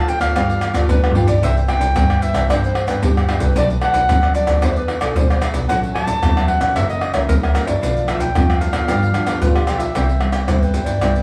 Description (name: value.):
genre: samba and choro.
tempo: 113 BPM.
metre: 4/4.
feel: straight.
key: unclear.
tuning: A4 = 442 Hz.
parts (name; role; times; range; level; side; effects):
dark clarinet; melody; 0.0-11.2 s; G4 to A5; -24 LUFS; equal; none.
cavaquinho; accompaniment; 0.0-11.2 s; D4 to G5; -30 LUFS; equal; none.
nylon-string guitar; accompaniment; 0.0-11.2 s; F#2 to A4; -28 LUFS; equal; none.
warm double bass; bass; 0.0-11.2 s; F#1 to G2; -23 LUFS; equal; none.
maracas, pandeiro, surdo and tamborim; percussion; 0.1-11.2 s; none; -21 LUFS; equal; none.
breathy trombone; second line; 9.1-9.9 s; D4 to F4; -28 LUFS; equal; none.
room: wet studio reverb, RT60 0.9 s.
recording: band playing live in one room, small room ambience.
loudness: -17 LUFS.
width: mono.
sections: 0.0-10.0 A section; 10.0-11.2 B section.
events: drum fill 1.0-1.4.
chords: 0.4 G9; 1.4 Cmaj9; 3.6 Bm7; 4.6 E7; 5.7 A6; 6.8 F#7; 7.8 Bm7b5; 8.9 G7; 10.0 Cmaj7.